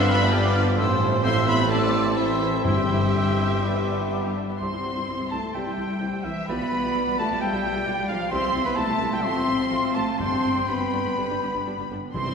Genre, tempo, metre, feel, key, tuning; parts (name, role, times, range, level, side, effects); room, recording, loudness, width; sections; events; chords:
classical, dramatic, fast romantic movement for symphony orchestra; 120-134 BPM; 4/4; rubato; C major; A4 = 440 Hz
rich symphonic violin section; melody; 0.0-12.3 s; E5 to C6; -33 LUFS; left 2 dB
clear clarinet; second line; 0.0-11.9 s; E4 to G5; -34 LUFS; left 1 dB
dark symphonic violin section; second line; 0.0-12.3 s; A3 to C6; -33 LUFS; left 1 dB
warm symphonic viola section; accompaniment; 0.0-12.3 s; F3 to E5; -32 LUFS; equal
mellow French horn section; sustained chords; 0.0-12.3 s; E3 to G4; -29 LUFS; left 2 dB
warm trombone section; sustained chords; 0.0-12.3 s; D3 to A3; -37 LUFS; right 4 dB
rich studio double bass section; bass; 0.0-12.3 s; G1 to C2; -30 LUFS; right 1 dB
warm symphonic cello section; bass; 0.0-12.3 s; E3 to C4; -30 LUFS; equal
warm tuba; bass; 0.0-12.2 s; G1 to C2; -33 LUFS; right 2 dB
mellow cor anglais; second line; 0.1-12.3 s; B4 to A5; -29 LUFS; right 1 dB
silver concert flute; second line; 0.1-12.3 s; E5 to F6; -33 LUFS; left 2 dB
timpani; percussion; 2.6-3.4, 10.2-12.3 s; G2 to C3; -30 LUFS; left 1 dB
wet church reverb, RT60 2.8 s; minimal, uncompressed stereo recording; -21 LUFS; side -6 dB against mid
0.0-4.6 A section; 4.6-12.3 B section
0.0 G7; 0.8 Am; 2.6 C/G; 3.6 G; 4.6 C; 6.5 G7/B; 8.3 C; 9.2 F/A; 10.2 G